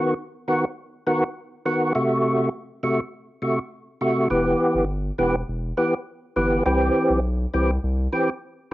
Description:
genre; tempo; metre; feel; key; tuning
dancehall; 102 BPM; 4/4; straight; E minor; A4 = 440 Hz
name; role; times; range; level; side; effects
percussive tonewheel organ; accompaniment; 0.0-8.3 s; C3 to G4; -20 LUFS; equal; overdrive, chorus vibrato, slow rotary speaker, cassette tape, plate reverb
saturated sub bass; bass; 4.3-8.1 s; E1 to C2; -24 LUFS; equal; none
room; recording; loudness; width
moderate studio reverb, RT60 0.6 s; home recording on cassette; -21 LUFS; side -16 dB against mid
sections
0.0-8.7 A section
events
none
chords
0.0 B; 2.0 F#dim; 4.3 Em; 6.7 C

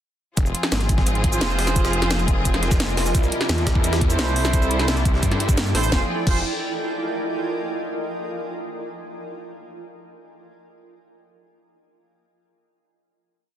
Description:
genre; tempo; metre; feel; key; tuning
dark technical drum and bass; 173 BPM; 4/4; straight; unclear; A4 = 437 Hz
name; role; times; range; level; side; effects
clear symphonic string section; sustained chords; 0.4-6.1 s; C3 to Ab4; -27 LUFS; left 1 dB; sidechain pumping
snarling distorted saw bass; bass; 0.4-6.4 s; F1 to G2; -23 LUFS; equal; none
drum and bass drum kit; drums; 0.4-6.3 s; cabasa, crash cymbal, hi-hat, snare drum; -25 LUFS; equal; none
electronic kick drum; drums; 0.4-6.3 s; none; -20 LUFS; equal; none
jungle sampler-style drum kit; drums; 0.4-5.8 s; hi-hat, snare drum; -33 LUFS; right 1 dB; none
granular cloud pad; texture; 1.7-7.3 s; E4 to Ab5; -28 LUFS; right 1 dB; built-in reverb, sidechain pumping
warm brass ensemble; stabs; 1.3-6.4 s; E4 to C5; -28 LUFS; right 4 dB; tape echo
room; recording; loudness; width
light reverb, digital ambience; dense, heavily limited modern master; -19 LUFS; side -11 dB against mid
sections
0.4-5.9 drop; 5.9-7.3 final chord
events
drop 0.4-5.9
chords
0.4 Fm; 3.1 C6; 5.9 Fm

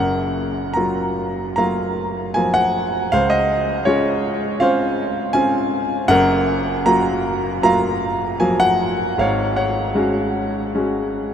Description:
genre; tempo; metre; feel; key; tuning
classical, lyrical solo piano; 70-83 BPM; 4/4; rubato; unclear; A4 = 441 Hz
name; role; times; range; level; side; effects
bright concert grand piano; solo; 0.0-11.3 s; Gb1 to Bb5; -17 LUFS; equal; none
room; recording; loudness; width
wet huge ambient reverb, RT60 7.1 s; in a vast, echoing space; -17 LUFS; side -8 dB against mid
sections
0.0-11.3 A section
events
none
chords
0.0 Gbmaj7; 3.1 Dbmaj7; 6.1 Gbmaj7; 9.2 Ab7sus4

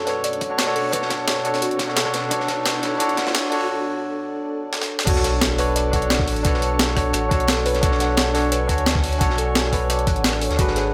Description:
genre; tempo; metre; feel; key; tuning
liquid drum and bass; 174 BPM; 4/4; straight; unclear; A4 = 440 Hz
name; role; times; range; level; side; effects
barky tine electric piano; accompaniment; 0.0-10.9 s; D4 to C#5; -26 LUFS; equal; digital delay
glassy FM pad; sustained chords; 0.0-10.9 s; B2 to G#5; -31 LUFS; equal; ensemble chorus, built-in reverb, sidechain pumping
harp-like synth pluck; arpeggios; 0.0-10.9 s; F#4 to F#5; -30 LUFS; equal; chorus, digital delay
riser and sub drop; sound effects; 0.8-6.5 s; none; -36 LUFS; equal; none
breakbeat sampler-style drum kit; drums; 0.1-10.8 s; crash cymbal, hi-hat, rim click, snare drum; -26 LUFS; equal; high-pass filter on hats, high-pass filter on snare, high-pass filter on cymbals, high-pass filter on room
crunchy breakbeat drum kit; drums; 0.1-10.8 s; hi-hat, snare drum; -32 LUFS; equal; high-pass filter on hats, high-pass filter on snare, high-pass filter on room
electronic kick drum; drums; 0.4-10.7 s; none; -26 LUFS; equal; high-pass filter on kick, high-pass filter on room
sub bass with octave; bass; 5.1-10.9 s; G#1 to D2; -27 LUFS; equal; none
room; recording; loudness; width
light reverb, digital ambience; high-pass filter; -21 LUFS; mono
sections
0.0-5.1 A section; 5.1-10.9 B section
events
build-up 0.0-5.1; filter sweep on synth pluck 0.0-5.1; break 3.7-5.1; drum fill 4.7-5.1; drop 5.1-10.9; impact 5.1-6.5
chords
0.0 Bm7

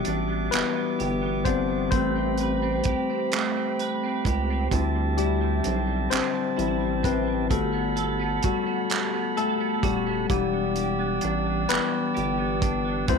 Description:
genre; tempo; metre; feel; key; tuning
slow six-eight R&B; 43 BPM (dotted quarters); 6/8; straight; unclear; A4 = 436 Hz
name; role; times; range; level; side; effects
clean electric guitar; second line; 0.0-13.2 s; D3 to B4; -31 LUFS; right 14 dB; ensemble chorus
tine electric piano; accompaniment; 0.0-13.2 s; F#3 to F#5; -27 LUFS; left 12 dB; overdrive, auto-pan
tonewheel organ; sustained chords; 0.0-13.2 s; G3 to E6; -31 LUFS; right 1 dB; overdrive, stopped rotary speaker
rubbery square bass; bass; 0.0-13.2 s; D#1 to D2; -29 LUFS; right 1 dB; transformer saturation
cloth-damped thuddy drum kit; drums; 0.0-13.2 s; handclaps, hi-hat, kick drum; -28 LUFS; right 4 dB; none
room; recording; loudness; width
light reverb, studio reverb; 1960s-style stereo with parts hard left and right; -23 LUFS; side -5 dB against mid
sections
0.0-13.2 A section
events
tine electric piano solo 0.0-13.2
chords
0.0 Em7; 1.9 Am9; 4.7 D9sus4; 7.5 Gmaj9; 10.3 Em7

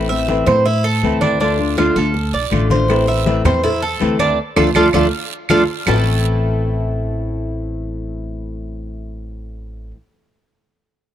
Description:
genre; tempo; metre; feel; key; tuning
latin, Cuban son and guajira; 161 BPM; 4/4; straight; A minor; A4 = 438 Hz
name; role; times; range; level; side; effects
fingerpicked steel-string acoustic guitar; accompaniment; 0.0-10.0 s; A2 to F4; -21 LUFS; left 5 dB; none
upright bass; bass; 0.0-9.9 s; A1 to A2; -21 LUFS; equal; none
Cuban tres; arpeggios; 0.1-9.9 s; A3 to E5; -18 LUFS; right 3 dB; none
congas; percussion; 0.1-6.0 s; none; -24 LUFS; left 1 dB; none
guiro; percussion; 0.3-6.0 s; none; -32 LUFS; right 10 dB; none
claves; percussion; 0.5-6.0 s; none; -25 LUFS; right 7 dB; none
cowbell and bongos; percussion; 2.9-6.0 s; none; -24 LUFS; left 2 dB; none
room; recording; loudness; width
light reverb; dark, warm production; -14 LUFS; side -11 dB against mid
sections
0.0-5.9 A section; 5.9-8.9 B section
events
band accent 4.4-5.9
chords
0.0 Am; 1.4 Dm; 2.9 Am; 4.4 Dm; 5.9 Am

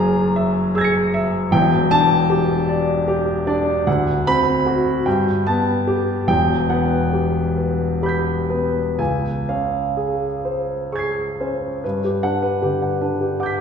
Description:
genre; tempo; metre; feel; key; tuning
classical, impressionist solo piano; 40-53 BPM (dotted quarters); 6/8; rubato; G lydian; A4 = 440 Hz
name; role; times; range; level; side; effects
warm concert grand piano; solo; 0.0-13.6 s; E1 to Db7; -17 LUFS; equal; none
room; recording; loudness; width
wet recital hall reverb, RT60 1.6 s; recorded in a church or concert hall; -17 LUFS; side -7 dB against mid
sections
0.0-11.8 A section; 11.8-13.6 B section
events
none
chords
0.0 Gb9; 1.5 Em7; 3.9 D6; 5.1 Gadd9; 6.3 Emadd9; 9.0 C#maj7; 11.8 Gmaj7

